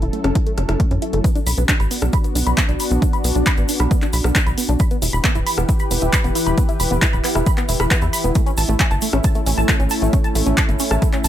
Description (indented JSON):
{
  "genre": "uplifting trance",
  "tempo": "135 BPM",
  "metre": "4/4",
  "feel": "straight",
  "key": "B minor",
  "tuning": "A4 = 439 Hz",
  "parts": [
    { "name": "lush unison pad", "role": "sustained chords", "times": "0.0-11.3 s", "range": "E3 to B4", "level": "-24 LUFS", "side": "equal", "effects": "chorus, vintage 12-bit sampler grit, sidechain pumping" },
    { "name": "tight sequenced synth", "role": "arpeggios", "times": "0.0-11.3 s", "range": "A3 to B5", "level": "-25 LUFS", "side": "right 1 dB", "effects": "chorus, sidechain pumping, ping-pong delay" },
    { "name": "tight sequencer bass", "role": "bass", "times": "0.0-11.3 s", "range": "D1 to F#2", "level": "-20 LUFS", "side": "equal", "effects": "sidechain pumping" },
    { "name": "punchy analog drum machine", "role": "drums", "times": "0.0-11.3 s", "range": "handclaps, hi-hat, rim click", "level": "-22 LUFS", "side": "left 1 dB", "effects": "overdrive, sidechain pumping on hats" },
    { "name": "electronic kick drum", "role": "drums", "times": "0.4-11.1 s", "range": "none", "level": "-18 LUFS", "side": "equal", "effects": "overdrive" },
    { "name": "egg shaker", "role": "percussion", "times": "1.3-11.3 s", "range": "none", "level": "-32 LUFS", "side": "right 2 dB", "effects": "none" }
  ],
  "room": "little or no reverb",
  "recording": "none",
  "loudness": "-15 LUFS",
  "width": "side -11 dB against mid",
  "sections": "0.0-11.3 A section",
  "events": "filter sweep on synth arpeggio sound 0.0-11.3",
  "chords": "0.0 F#m7; 1.2 Bm; 4.8 Em; 8.4 A"
}